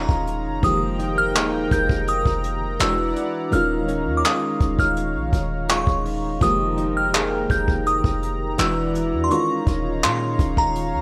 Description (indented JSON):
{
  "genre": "contemporary R&B",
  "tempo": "83 BPM",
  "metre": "4/4",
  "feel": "straight",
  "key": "unclear",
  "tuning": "A4 = 440 Hz",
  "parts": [
    { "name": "glassy synth bell", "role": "melody", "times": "0.0-11.0 s", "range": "Bb5 to G6", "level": "-27 LUFS", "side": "equal", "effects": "chorus, tape echo" },
    { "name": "FM electric piano with tremolo", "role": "accompaniment", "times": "0.0-11.0 s", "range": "Eb3 to G4", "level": "-31 LUFS", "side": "equal", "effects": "phaser" },
    { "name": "chorused pulse-width pad", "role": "sustained chords", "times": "0.0-11.0 s", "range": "Eb4 to Bb5", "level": "-32 LUFS", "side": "equal", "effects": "none" },
    { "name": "nylon-string guitar", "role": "arpeggios", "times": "0.0-11.0 s", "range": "Eb3 to Ab4", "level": "-30 LUFS", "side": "equal", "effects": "tape echo" },
    { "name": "clean 808-style bass", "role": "bass", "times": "0.0-11.0 s", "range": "Eb1 to Bb2", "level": "-29 LUFS", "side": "equal", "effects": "none" },
    { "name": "jazz brush drum kit", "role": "drums", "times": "0.1-10.9 s", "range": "handclaps, hi-hat, kick drum", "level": "-25 LUFS", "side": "equal", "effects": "none" }
  ],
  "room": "light reverb, small room ambience",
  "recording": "none",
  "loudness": "-21 LUFS",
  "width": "mono",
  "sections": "0.0-11.0 A section",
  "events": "none",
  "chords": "0.0 Eb9sus4; 0.6 Fm11; 2.8 E9; 3.5 Eb9sus4; 6.4 Fm11; 8.6 E9; 9.3 Eb9sus4"
}